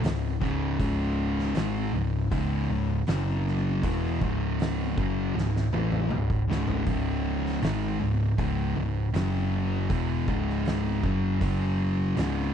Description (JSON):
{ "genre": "stoner and doom metal", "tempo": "79 BPM", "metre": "4/4", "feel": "straight", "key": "C# minor", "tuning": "A4 = 444 Hz", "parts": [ { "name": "thick fuzz guitar", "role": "riff", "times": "0.0-12.5 s", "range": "C#2 to A3", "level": "-29 LUFS", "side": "left 8 dB", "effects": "distortion" }, { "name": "thick fuzz guitar", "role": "riff", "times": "0.0-12.5 s", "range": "C#2 to A3", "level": "-30 LUFS", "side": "right 8 dB", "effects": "distortion" }, { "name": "hollow-body short-scale picked electric bass", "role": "bass", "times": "0.0-12.5 s", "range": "C#1 to A1", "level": "-31 LUFS", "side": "equal", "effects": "overdrive" }, { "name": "oversized low-tuned drum kit", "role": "drums", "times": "0.0-12.4 s", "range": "hi-hat, kick drum, snare drum, toms", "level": "-32 LUFS", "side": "equal", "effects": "vintage 12-bit sampler grit" } ], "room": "small room ambience", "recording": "none", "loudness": "-24 LUFS", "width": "side -8 dB against mid", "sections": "0.0-12.5 A section", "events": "drum fill 5.4-6.9", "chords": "0.0 C#5; 3.1 F#5; 3.8 C#m; 9.1 F#5; 9.9 C#m; 11.4 F#5" }